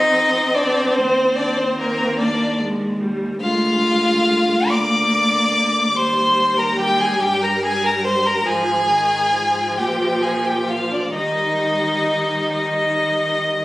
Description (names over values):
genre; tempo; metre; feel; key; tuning
classical, slow romantic movement for string quartet; 43-50 BPM (dotted quarters); 6/8; rubato; Eb major; A4 = 440 Hz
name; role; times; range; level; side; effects
rich violin; melody; 0.0-13.6 s; Bb4 to D6; -19 LUFS; left 1 dB; none
bright violin; second line; 0.0-13.4 s; Bb3 to D5; -22 LUFS; equal; none
warm viola; accompaniment; 0.0-13.6 s; Eb3 to C4; -24 LUFS; equal; none
warm cello; bass; 0.0-13.6 s; D2 to Eb3; -26 LUFS; right 1 dB; none
room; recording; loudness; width
wet recital hall reverb, RT60 1.4 s; recorded on a phone in the room, studio reverb, compression; -16 LUFS; side -17 dB against mid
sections
0.0-13.6 A section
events
none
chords
0.0 Ab (rootless); 1.0 Eb; 3.4 Bb7/D; 6.0 Eb; 8.5 Fm/Ab; 9.8 Bb5; 11.1 Eb